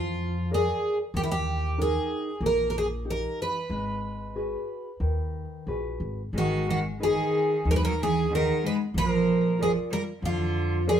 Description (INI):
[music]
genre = fado-style ballad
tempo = 93 BPM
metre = 4/4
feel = rubato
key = G# minor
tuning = A4 = 440 Hz
[part]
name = picked twelve-string acoustic guitar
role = melody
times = 0.0-11.0 s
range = E4 to B4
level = -27 LUFS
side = equal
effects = none
[part]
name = nylon-string guitar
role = accompaniment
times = 0.0-11.0 s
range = D#3 to G5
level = -33 LUFS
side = right 1 dB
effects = none
[part]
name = upright bass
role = bass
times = 0.0-11.0 s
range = G#1 to E#2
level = -30 LUFS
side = equal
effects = none
[part]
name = clear cello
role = second line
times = 6.4-11.0 s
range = D3 to G#3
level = -28 LUFS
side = right 3 dB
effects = none
[sound]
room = moderate studio reverb, RT60 0.7 s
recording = band playing live in one room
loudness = -24 LUFS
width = side -9 dB against mid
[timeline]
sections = 0.0-6.3 A section; 6.3-11.0 A section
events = none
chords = 0.0 A#7; 1.1 D#; 3.7 G#m7; 6.3 G#m; 9.0 A#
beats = 0.51 | 1.15 1.78 2.41 3.05 | 3.70 4.35 5.01 5.67 | 6.34 7.00 7.66 8.31 | 8.95 9.59 10.23 10.87